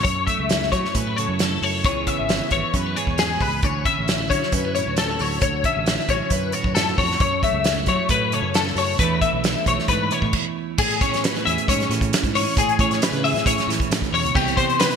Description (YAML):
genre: math rock and midwest emo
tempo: 134 BPM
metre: 4/4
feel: straight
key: A major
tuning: A4 = 440 Hz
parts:
  - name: clean electric guitar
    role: accompaniment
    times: 0.0-15.0 s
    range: E2 to A4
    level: -27 LUFS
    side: right 10 dB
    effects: lush chorus
  - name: twelve-string electric guitar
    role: arpeggios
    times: 0.0-15.0 s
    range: G4 to E5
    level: -22 LUFS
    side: left 6 dB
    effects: ensemble chorus, ping-pong delay
  - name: overdriven fingered electric bass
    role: bass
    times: 0.0-14.6 s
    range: G#1 to F#3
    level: -27 LUFS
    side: equal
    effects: none
  - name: loose indie drum kit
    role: drums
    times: 0.0-15.0 s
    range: crash cymbal, hi-hat, kick drum, snare drum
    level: -23 LUFS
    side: right 1 dB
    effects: gated reverb
room: moderate lush hall reverb, RT60 1.9 s, studio ambience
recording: bright 1980s-style digital production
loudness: -18 LUFS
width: side -6 dB against mid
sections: 0.0-10.8 A section; 10.8-15.0 B section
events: stop 10.3-10.8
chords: 0.1 F#m7; 1.8 C#m7; 3.6 Dmaj9; 7.2 F#m7; 9.0 E7sus4; 10.8 Amaj7; 14.3 Cmaj7